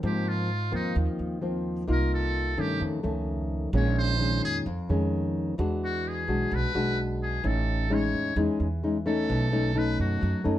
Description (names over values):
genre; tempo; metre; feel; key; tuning
bossa nova; 130 BPM; 4/4; straight; unclear; A4 = 442 Hz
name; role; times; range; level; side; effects
nylon-string guitar; accompaniment; 0.0-10.6 s; F2 to F#4; -28 LUFS; left 2 dB; none
upright bass; bass; 0.0-10.6 s; A1 to Ab2; -29 LUFS; right 1 dB; none
trumpet with metal mute; melody; 0.1-10.4 s; Eb4 to Db5; -32 LUFS; equal; plate reverb
room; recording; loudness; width
light reverb; none; -25 LUFS; side -13 dB against mid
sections
0.0-10.6 A section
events
muted trumpet solo 0.0-10.6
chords
0.0 Ab69; 1.9 Cm7; 2.8 Faug7; 3.7 Bbm11; 5.6 E9; 7.4 Amaj7#11; 9.3 B9